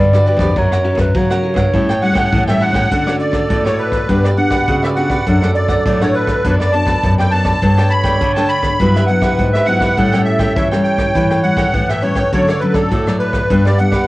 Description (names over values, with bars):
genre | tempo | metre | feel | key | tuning
samba and choro | 102 BPM | 4/4 | straight | D major | A4 = 441 Hz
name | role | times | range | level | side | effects
dark clarinet | second line | 0.0-14.1 s | F#4 to D5 | -21 LUFS | right 2 dB | cassette tape, plate reverb
cavaquinho | accompaniment | 0.0-14.1 s | D4 to G5 | -24 LUFS | right 2 dB | cassette tape, plate reverb
nylon-string guitar | accompaniment | 0.0-14.1 s | G2 to B4 | -20 LUFS | left 2 dB | cassette tape, plate reverb
nylon-string guitar | bass | 0.0-14.0 s | E#2 to F#3 | -17 LUFS | equal | none
jazz brush drum kit | drums | 0.1-14.1 s | hi-hat, kick drum, ride cymbal, rim click | -20 LUFS | equal | none
musette accordion | melody | 2.0-14.1 s | A4 to B5 | -18 LUFS | equal | cassette tape, plate reverb
room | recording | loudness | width
light reverb | home recording on cassette | -12 LUFS | side -18 dB against mid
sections
0.0-2.9 A section; 2.9-14.1 B section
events
clarinet solo 0.0-2.9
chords
0.0 Gmaj7; 0.6 F#; 1.7 A7; 2.9 Dmaj7; 4.1 Gmaj7; 5.3 D/F#; 6.4 Bm7/F#; 7.6 Gsus2; 8.8 Emadd9/G; 10.0 A7; 12.3 Dmaj7; 13.5 G